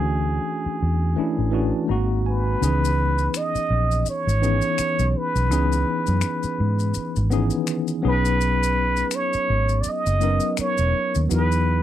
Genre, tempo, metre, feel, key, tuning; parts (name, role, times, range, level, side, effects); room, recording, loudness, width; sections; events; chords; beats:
R&B, neo-soul; 83 BPM; 4/4; swing 57% on 16ths; C# minor; A4 = 440 Hz
trumpet with plunger mute; melody; 0.0-11.8 s; G#4 to D#5; -24 LUFS; right 2 dB
tine electric piano; accompaniment; 0.0-11.8 s; D#3 to A#5; -25 LUFS; left 2 dB; medium stereo tremolo
vintage muted fingered electric bass; bass; 0.0-11.8 s; E1 to G#2; -22 LUFS; equal
maracas and finger snaps; percussion; 2.6-11.7 s; -33 LUFS; left 12 dB
little or no reverb; dry, close 1970s-style studio recording; -19 LUFS; side -12 dB against mid
0.0-2.6 A section; 2.6-11.8 B section
tine electric piano fill 1.2-2.6
0.0 Dmaj9; 1.9 G#7; 2.6 C#m9; 8.0 B69; 11.3 Emaj7
0.45 1.17 1.90 | 2.62 3.34 4.06 4.79 | 5.51 6.23 6.96 7.68 | 8.40 9.12 9.85 10.57 | 11.29